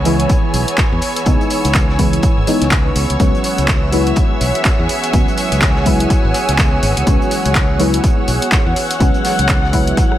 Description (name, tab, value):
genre	deep house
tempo	124 BPM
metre	4/4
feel	swing 59% on 16ths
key	unclear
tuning	A4 = 440 Hz
part	warm analog pad	sustained chords	0.0-10.2 s	E3 to G#5	-22 LUFS	right 3 dB	chorus, sidechain pumping
part	deep mellow chord stab	stabs	0.0-10.2 s	E3 to E4	-20 LUFS	equal	chorus, sidechain pumping, digital delay
part	fingered electric bass	bass	0.0-9.9 s	G#1 to E2	-18 LUFS	equal	tube saturation, sidechain pumping
part	dark chamber string section	texture	0.0-10.2 s	E3 to G#5	-23 LUFS	left 2 dB	sidechain pumping
part	string machine, violins	texture	0.0-10.2 s	C#5 to E6	-26 LUFS	equal	ensemble chorus, sidechain pumping
part	crunchy breakbeat drum kit	drums	0.1-10.1 s	hi-hat, snare drum	-31 LUFS	equal	none
part	punchy analog drum machine	drums	0.1-10.2 s	handclaps, hi-hat, rim click	-21 LUFS	equal	none
part	electronic kick drum	drums	0.3-10.1 s	none	-15 LUFS	equal	none
room	light reverb, small room ambience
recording	none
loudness	-12 LUFS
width	side -12 dB against mid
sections	0.0-10.2 A section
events	drum fill 10.0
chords	0.0 C#m7; 3.0 E69